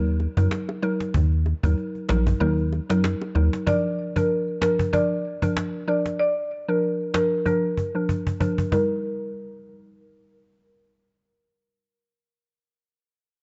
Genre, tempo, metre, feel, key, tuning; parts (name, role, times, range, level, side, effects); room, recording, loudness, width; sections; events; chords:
dancehall; 95 BPM; 4/4; swing 56% on 16ths; A4 = 444 Hz
mallet-like synth pluck; accompaniment; 0.0-12.7 s; F3 to Bb4; -29 LUFS; equal; chorus, low-pass filter
plucky analog bass; bass; 0.0-3.5 s; Bb1 to Gb2; -23 LUFS; equal
cajon; drums; 0.1-8.9 s; -30 LUFS; equal
bongos; percussion; 0.2-3.5 s; -39 LUFS; equal
marimba with medium mallets; melody; 3.7-10.6 s; Bb4 to D5; -27 LUFS; equal; low-pass filter, tape echo
small room ambience; dark, warm production, nothing above 7.9 kHz; -24 LUFS; mono
0.0-3.7 A section; 3.7-8.7 B section; 8.7-11.2 C section
kick muted 2.4-3.7; filter sweep 3.7-8.7; drum fill 7.5-8.7
0.0 Ebm; 3.7 Bb; 8.7 Eb